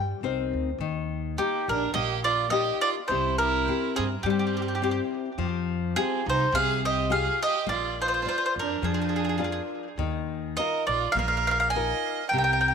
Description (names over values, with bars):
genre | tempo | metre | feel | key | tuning
italian folk, Italian serenade | 104 BPM | 4/4 | swing 55% on 8ths | Eb major | A4 = 440 Hz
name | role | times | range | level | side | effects
bowl-back mandolin | melody | 0.0-12.7 s | G4 to Ab5 | -26 LUFS | right 1 dB | tape echo
nylon-string guitar | accompaniment | 0.0-12.7 s | C3 to G5 | -30 LUFS | left 10 dB | none
upright bass | bass | 0.0-12.7 s | Bb1 to G2 | -32 LUFS | right 2 dB | none
clear violin | second line | 1.4-12.7 s | Bb3 to Eb5 | -32 LUFS | right 13 dB | none
room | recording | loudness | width
moderate echo chamber reverb, RT60 2.0 s, studio reverb | 1960s-style stereo with parts hard left and right | -24 LUFS | side -6 dB against mid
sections
0.8-12.7 A section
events
nylon-string guitar fill 0.0-0.8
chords
0.0 Cm7; 0.8 Eb; 3.1 C; 5.4 Fmadd9; 7.7 Bb; 10.0 Ebsus2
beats
0.21 | 0.79 1.37 1.94 2.52 | 3.10 3.67 4.25 4.82 | 5.39 5.96 6.53 7.09 | 7.67 8.24 8.83 9.42 | 10.00 10.58 11.17 11.75 | 12.33